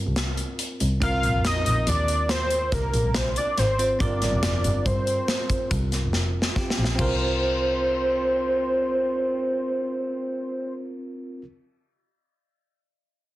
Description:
progressive instrumental, band music in an uneven meter; 141 BPM; 7/4; straight; C minor; A4 = 440 Hz
bell-like tine electric piano; accompaniment; 0.0-11.4 s; C4 to C5; -31 LUFS; right 1 dB; fast stereo tremolo
warm double bass; bass; 0.0-10.7 s; F1 to G2; -26 LUFS; equal
modern studio drum kit; drums; 0.2-7.1 s; crash cymbal, hi-hat, kick drum, snare drum; -28 LUFS; equal
fat analog lead; melody; 1.0-10.7 s; Bb4 to F5; -24 LUFS; equal; chorus
moderate studio reverb, RT60 0.9 s; dense, heavily limited modern master; -22 LUFS; side -16 dB against mid
0.0-7.0 A section; 7.0-10.0 B section
drum fill 6.1-7.0
0.0 Dm7 (rootless); 1.0 Cm7; 4.0 G7sus4; 7.0 C7sus4

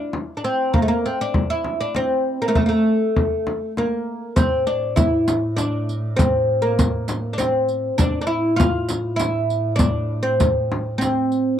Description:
Arabic maqam ensemble; 99 BPM; 3/4; straight; A maqam kurd; A4 = 440 Hz
oud; melody; 0.0-11.6 s; A3 to F4; -20 LUFS; equal
frame drum; percussion; 0.1-11.2 s; -21 LUFS; left 1 dB
clear double bass; drone; 4.4-11.6 s; A2; -27 LUFS; right 1 dB; stereo widening
riq; percussion; 4.4-11.4 s; -29 LUFS; right 8 dB
little or no reverb; dry, close 1970s-style studio recording; -18 LUFS; side -10 dB against mid
0.0-4.4 A section; 4.4-11.6 B section

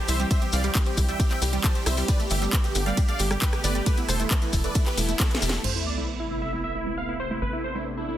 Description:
uplifting trance; 135 BPM; 4/4; straight; A minor; A4 = 439 Hz
supersaw chords; melody; 0.0-8.2 s; E4 to A5; -30 LUFS; equal; sidechain pumping, low-pass filter, dub echo
lush unison pad; sustained chords; 0.1-8.2 s; C3 to A4; -34 LUFS; right 1 dB; chorus, sidechain pumping
wide unison pluck; arpeggios; 0.1-8.2 s; G3 to A5; -34 LUFS; right 4 dB; sidechain pumping, dub echo
tight sequencer bass; bass; 0.1-8.2 s; E1 to C2; -29 LUFS; equal; sidechain pumping
house drum kit; drums; 0.1-5.7 s; crash cymbal, handclaps, hi-hat, ride cymbal, rim click, snare drum; -30 LUFS; equal; sidechain pumping on hats, sidechain pumping on cymbals
maracas; percussion; 0.1-5.6 s; -34 LUFS; left 4 dB
electronic kick drum; drums; 0.3-5.3 s; -23 LUFS; equal
sub drop; sound effects; 5.6-7.4 s; -34 LUFS; equal
digital ambience; dense, heavily limited modern master; -22 LUFS; side -12 dB against mid
0.0-5.6 A section; 5.6-8.2 B section
drop 0.0-5.6; drum fill 5.2-5.6; impact 5.6-7.4
0.0 C; 2.1 Gadd9; 3.9 Esus4; 5.6 Amadd9

